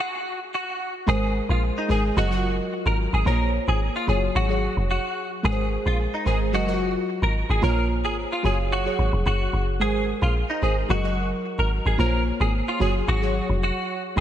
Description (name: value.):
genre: afrobeats.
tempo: 110 BPM.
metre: 4/4.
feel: straight.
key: unclear.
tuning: A4 = 440 Hz.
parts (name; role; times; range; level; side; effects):
direct-recorded clean electric guitar; melody; 0.0-14.2 s; Eb4 to Bb4; -27 LUFS; equal; ensemble chorus, analog delay.
glassy digital keys; accompaniment; 1.1-14.2 s; Gb3 to Eb5; -27 LUFS; equal; chorus.
deep log drum bass; bass; 1.1-14.2 s; F1 to Bb1; -23 LUFS; equal; none.
room: moderate lush hall reverb, RT60 2.0 s.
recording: dreamy mix soaked in reverb.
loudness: -21 LUFS.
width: side -10 dB against mid.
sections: 0.0-1.1 A section; 1.1-14.2 B section.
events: stop 0.0-1.1.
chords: 0.0 N.C.; 1.1 Abadd9; 2.2 Ebm/Gb; 3.3 Bbmadd9; 4.1 Gbsus2; 5.4 Abadd9; 6.5 Ebm/Gb; 7.6 Bbmadd9; 8.4 Gbsus2; 9.8 Abadd9; 10.9 Ebm/Gb; 12.0 Bbmadd9; 12.8 Gbsus2.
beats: 0.53 | 1.08 1.62 2.17 2.71 | 3.26 3.81 4.35 4.90 | 5.44 5.99 6.53 7.08 | 7.62 8.17 8.71 9.26 | 9.80 10.35 10.90 11.44 | 11.99 12.53 13.08 13.62 | 14.17.